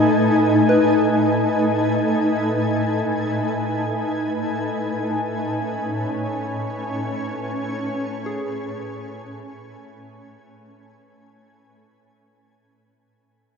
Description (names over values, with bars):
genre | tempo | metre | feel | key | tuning
ambient | free time | none | none | unclear | A4 = 440 Hz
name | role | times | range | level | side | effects
shimmering ambient pad | sustained chords | 0.0-13.1 s | A2 to G#5 | -20 LUFS | left 1 dB | chorus, built-in reverb, shimmer reverb
soft synth bell | arpeggios | 0.0-13.1 s | G#4 to B4 | -27 LUFS | right 2 dB | chorus, phaser, tape echo, shimmer reverb
room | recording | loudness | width
wet cathedral reverb, RT60 6.3 s | in a vast, echoing space | -19 LUFS | side -5 dB against mid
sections
0.0-13.0 A section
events
filter sweep on ambient pad 0.0-13.0; fade-out 0.5-13.0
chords
0.0 G#m/A